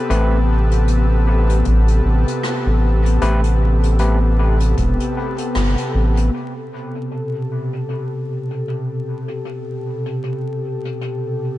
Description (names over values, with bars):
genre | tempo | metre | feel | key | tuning
ambient dub | 77 BPM | 4/4 | swing 58% on 16ths | A minor | A4 = 439 Hz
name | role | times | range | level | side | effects
airy breathy pad | sustained chords | 0.0-11.6 s | B2 to A4 | -22 LUFS | left 1 dB | chorus
overdriven tine electric piano | stabs | 0.1-4.2 s | A3 to B4 | -26 LUFS | left 1 dB | auto-pan, dub echo
round analog bass | bass | 0.1-6.3 s | E1 to A1 | -15 LUFS | equal | none
jazz brush drum kit | drums | 0.1-11.2 s | hi-hat, rim click | -32 LUFS | left 1 dB | low-pass filter on hats, low-pass filter on snare, low-pass filter on room, dub echo
electronic kick drum | drums | 1.7-5.0 s | none | -23 LUFS | equal | none
room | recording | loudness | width
light reverb, small room ambience | vinyl crackle, nothing above 10.9 kHz | -16 LUFS | side -16 dB against mid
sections
0.0-6.3 A section; 6.3-11.6 B section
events
band accent 5.6-5.9; filter sweep on drum 6.3-11.6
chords
0.0 Am9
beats
| 0.10 0.88 1.66 2.44 | 3.22 4.00 4.78 5.55 | 6.33 7.11 7.89 8.67 | 9.45 10.23 11.01